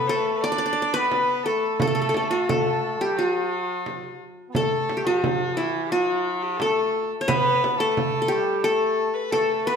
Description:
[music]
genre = Arabic maqam ensemble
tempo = 88 BPM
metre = 4/4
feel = straight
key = unclear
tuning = A4 = 440 Hz
[part]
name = qanun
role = melody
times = 0.0-9.8 s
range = E4 to D5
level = -23 LUFS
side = left 2 dB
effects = none
[part]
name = trombone with metal mute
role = second line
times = 0.0-9.8 s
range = E3 to D4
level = -28 LUFS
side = right 3 dB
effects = none
[part]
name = warm violin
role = second line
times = 0.0-9.8 s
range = F4+42c to D5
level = -30 LUFS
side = left 3 dB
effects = none
[part]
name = frame drum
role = percussion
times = 1.1-9.5 s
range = none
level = -28 LUFS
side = right 4 dB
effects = none
[sound]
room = wet large studio reverb, RT60 1.2 s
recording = band playing live in one room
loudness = -21 LUFS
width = side -6 dB against mid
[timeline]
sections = 0.0-9.8 A section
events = none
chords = none

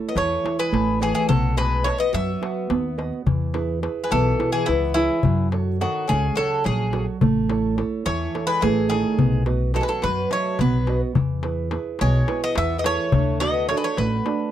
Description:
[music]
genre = greek folk, Greek bouzouki band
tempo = 213 BPM (eighths)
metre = 7/8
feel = straight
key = E major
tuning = A4 = 443 Hz
[part]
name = nylon-string guitar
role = accompaniment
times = 0.0-14.5 s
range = B2 to F#5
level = -25 LUFS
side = right 6 dB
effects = none
[part]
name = Greek bouzouki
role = melody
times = 0.1-14.5 s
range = E4 to E5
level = -24 LUFS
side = equal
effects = none
[part]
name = Greek bouzouki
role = second line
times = 0.1-14.5 s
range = C#3 to B3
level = -29 LUFS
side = left 10 dB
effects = none
[part]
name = upright bass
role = bass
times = 0.2-14.2 s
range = A1 to F#2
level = -24 LUFS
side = left 1 dB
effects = none
[part]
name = darbuka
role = percussion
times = 0.2-14.5 s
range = none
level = -24 LUFS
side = left 4 dB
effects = none
[sound]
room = little or no reverb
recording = dry, close 1970s-style studio recording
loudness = -19 LUFS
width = side -11 dB against mid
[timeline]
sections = 0.0-3.3 A section; 3.3-14.5 A section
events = none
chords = 0.0 A; 1.3 B; 3.3 E; 5.2 F#m; 7.2 A; 9.2 B; 11.2 E; 13.1 D

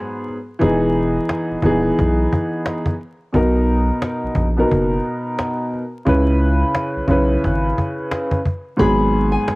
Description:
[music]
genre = hip hop, boom-bap hip-hop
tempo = 88 BPM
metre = 4/4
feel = swing 62% on 16ths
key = unclear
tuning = A4 = 440 Hz
[part]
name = dark upright piano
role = accompaniment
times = 0.0-9.6 s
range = G#2 to B4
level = -18 LUFS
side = equal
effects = high-pass filter, low-pass filter, cassette tape
[part]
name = cajon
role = drums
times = 0.3-9.6 s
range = none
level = -22 LUFS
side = equal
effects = cassette tape
[part]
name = saturated sub bass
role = bass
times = 0.6-9.4 s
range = D#1 to C#2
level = -20 LUFS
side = equal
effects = none
[part]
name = nylon-string guitar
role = melody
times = 8.8-9.6 s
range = G#5 to B5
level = -21 LUFS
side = left 3 dB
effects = high-pass filter, low-pass filter, cassette tape
[sound]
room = light reverb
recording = home recording on cassette, vinyl crackle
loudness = -16 LUFS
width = side -23 dB against mid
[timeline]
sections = 0.0-8.8 A section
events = none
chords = 0.0 G#m7; 0.6 Emaj7; 3.3 Bmaj7; 6.1 C#m7; 8.8 G#m7

